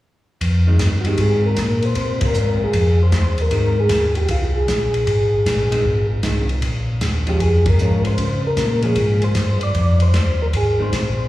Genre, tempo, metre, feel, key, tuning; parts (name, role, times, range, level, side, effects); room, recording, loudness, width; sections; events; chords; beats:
soul jazz organ trio; 154 BPM; 4/4; swing 66% on 8ths; F minor; A4 = 439 Hz
mellow tonewheel organ; bass; 0.4-11.3 s; Ab1 to Db3; -18 LUFS; equal; chorus vibrato, slow rotary speaker
warm soul drum kit; drums; 0.4-11.0 s; hi-hat, kick drum, ride cymbal, snare drum; -24 LUFS; equal
vintage hollow-body jazz guitar; accompaniment; 0.7-10.9 s; Eb3 to Db4; -25 LUFS; right 1 dB; slapback echo
percussive tonewheel organ; melody; 1.0-11.3 s; F4 to D5; -21 LUFS; left 1 dB; slow rotary speaker, chorus vibrato, slapback echo
light reverb; live gig heard through the venue's PA, recital hall reverb, small room ambience; -15 LUFS; side -16 dB against mid
0.4-11.3 A section
band accent 2.2, 7.6
0.4 Fm7; 6.6 Bbm7; 9.7 Fm7
| 0.41 0.80 1.18 1.57 | 1.96 2.35 2.74 3.13 | 3.51 3.90 4.29 4.68 | 5.07 5.46 5.85 6.24 | 6.63 7.01 7.41 7.79 | 8.19 8.57 8.96 9.36 | 9.75 10.14 10.53 10.92